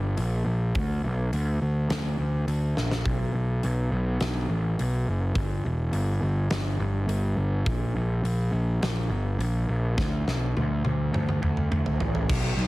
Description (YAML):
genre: quiet-loud alternative rock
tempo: 104 BPM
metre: 4/4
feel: straight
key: unclear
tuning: A4 = 441 Hz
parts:
  - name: fuzz picked electric bass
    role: bass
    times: 0.0-12.7 s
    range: E1 to D2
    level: -25 LUFS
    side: equal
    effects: overdrive
  - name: big rock drum kit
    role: drums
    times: 0.2-12.7 s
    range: crash cymbal, hi-hat, kick drum, snare drum, toms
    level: -30 LUFS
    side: equal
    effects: none
room: little or no reverb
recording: heavily compressed radio sound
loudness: -24 LUFS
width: side -19 dB against mid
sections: 0.0-12.3 A section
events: half time 0.0-12.3; drum fill 2.8, 10.0-12.3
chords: none